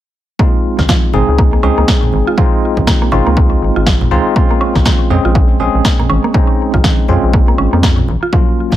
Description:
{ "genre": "deep house", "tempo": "121 BPM", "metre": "4/4", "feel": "swing 59% on 16ths", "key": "Bb minor", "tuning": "A4 = 441 Hz", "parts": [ { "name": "mallet-like synth pluck", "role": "arpeggios", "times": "0.4-8.4 s", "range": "F3 to F4", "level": "-20 LUFS", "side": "right 3 dB", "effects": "chorus, sidechain pumping, ping-pong delay" }, { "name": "bell-like tine electric piano", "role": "stabs", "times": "0.4-8.8 s", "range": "Gb3 to Ab4", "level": "-16 LUFS", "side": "equal", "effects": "medium stereo tremolo, sidechain pumping, ping-pong delay" }, { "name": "electronic kick drum", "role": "drums", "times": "0.4-8.8 s", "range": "none", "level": "-13 LUFS", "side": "equal", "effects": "none" }, { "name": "rubbery square bass", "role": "bass", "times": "0.8-8.8 s", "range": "Eb1 to F2", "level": "-15 LUFS", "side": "equal", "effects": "sidechain pumping" }, { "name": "electronic snare drum", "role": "drums", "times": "0.8-8.8 s", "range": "none", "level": "-18 LUFS", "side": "equal", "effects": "none" }, { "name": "congas", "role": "percussion", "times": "0.8-8.8 s", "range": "none", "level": "-22 LUFS", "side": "right 1 dB", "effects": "sidechain pumping on perc" } ], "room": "light reverb", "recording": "none", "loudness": "-10 LUFS", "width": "side -13 dB against mid", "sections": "0.4-8.8 A section", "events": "none", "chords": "0.4 Bbm9" }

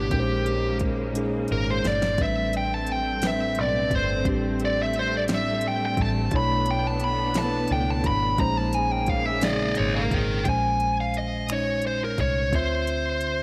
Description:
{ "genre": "slow six-eight R&B", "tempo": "58 BPM (dotted quarters)", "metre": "6/8", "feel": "straight", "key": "unclear", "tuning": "A4 = 439 Hz", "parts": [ { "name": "smooth overdriven lead guitar", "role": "melody", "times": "0.0-13.4 s", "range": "G4 to B5", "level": "-28 LUFS", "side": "equal", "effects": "none" }, { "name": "mellow tine electric piano", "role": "accompaniment", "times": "0.0-13.4 s", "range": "A2 to E5", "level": "-31 LUFS", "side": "equal", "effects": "none" }, { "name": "warm studio string section", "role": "sustained chords", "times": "0.0-10.4 s", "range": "Db3 to D4", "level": "-35 LUFS", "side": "equal", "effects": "none" }, { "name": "vintage muted fingered electric bass", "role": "bass", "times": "0.0-13.4 s", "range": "G1 to D2", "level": "-32 LUFS", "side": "equal", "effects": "none" }, { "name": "smooth R&B drum kit", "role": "drums", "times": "0.1-13.4 s", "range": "finger snaps, hi-hat, kick drum, snare drum", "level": "-31 LUFS", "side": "equal", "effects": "none" } ], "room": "moderate lush hall reverb, RT60 2.3 s", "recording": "dreamy mix soaked in reverb", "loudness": "-25 LUFS", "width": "mono", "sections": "0.0-10.5 A section; 10.5-13.4 B section", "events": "lead electric guitar solo 0.0-10.5; drum fill 1.1-2.2", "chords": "0.1 Bbm11; 2.2 Am11; 6.3 Bm11; 8.4 Bbm11; 10.5 Bbm9; 12.5 Dm9" }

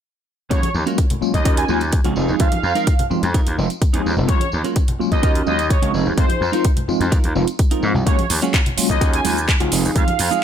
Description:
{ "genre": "filtered disco house", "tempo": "127 BPM", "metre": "4/4", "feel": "straight", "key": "Eb dorian", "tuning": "A4 = 440 Hz", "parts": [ { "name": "analog synth brass", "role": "melody", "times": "0.5-10.4 s", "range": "C5 to Ab5", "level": "-24 LUFS", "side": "right 2 dB", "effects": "chorus, sidechain pumping, low-pass filter" }, { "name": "tine electric piano", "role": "accompaniment", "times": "0.5-10.4 s", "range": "F3 to F4", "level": "-23 LUFS", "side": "left 1 dB", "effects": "medium stereo tremolo, phaser, vintage 12-bit sampler grit, sidechain pumping, low-pass filter" }, { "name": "clean electric guitar", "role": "riff", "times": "0.5-10.4 s", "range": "Db4 to Bb4", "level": "-27 LUFS", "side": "right 7 dB", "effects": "sidechain pumping, low-pass filter" }, { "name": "gritty slap bass", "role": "bass", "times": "0.5-10.3 s", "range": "F1 to Ab2", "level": "-22 LUFS", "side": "equal", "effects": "overdrive, sidechain pumping, low-pass filter" }, { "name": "electronic kick drum", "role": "drums", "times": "0.5-10.1 s", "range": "none", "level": "-17 LUFS", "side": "equal", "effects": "none" }, { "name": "house drum kit", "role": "drums", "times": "0.5-10.4 s", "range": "cabasa, handclaps, hi-hat", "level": "-25 LUFS", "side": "right 2 dB", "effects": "sidechain pumping on hats, sidechain pumping on perc" }, { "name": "tambourine and congas", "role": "percussion", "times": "0.5-10.4 s", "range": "none", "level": "-29 LUFS", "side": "left 2 dB", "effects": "sidechain pumping on perc, low-pass filter on perc" } ], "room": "light reverb", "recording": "none", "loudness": "-16 LUFS", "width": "side -9 dB against mid", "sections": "0.5-10.4 A section", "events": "none", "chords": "0.5 Ebm11; 2.2 Fm7; 4.3 Ebm11; 5.9 Fm7; 8.1 Ebm11; 9.7 Fm7" }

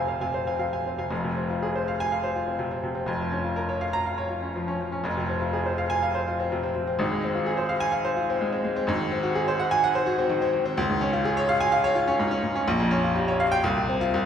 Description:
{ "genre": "classical, virtuoso piano study", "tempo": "125 BPM", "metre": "4/4", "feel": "uneven beats, rubato", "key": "F minor", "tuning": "A4 = 437 Hz", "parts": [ { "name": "clear baby grand piano", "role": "solo", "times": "0.0-14.3 s", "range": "F1 to Bb5", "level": "-23 LUFS", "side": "equal", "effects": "none" } ], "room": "wet recital hall reverb, RT60 1.5 s", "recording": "recorded in a church or concert hall", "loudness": "-23 LUFS", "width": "side -8 dB against mid", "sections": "0.0-1.1 A section; 1.1-14.3 B section", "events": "none", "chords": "0.0 Fm; 3.1 Bbm/F; 5.0 Fm; 7.0 Fm/Ab; 8.9 Ab7; 10.8 Db; 12.7 Gm7b5/Bb; 13.6 F5/C" }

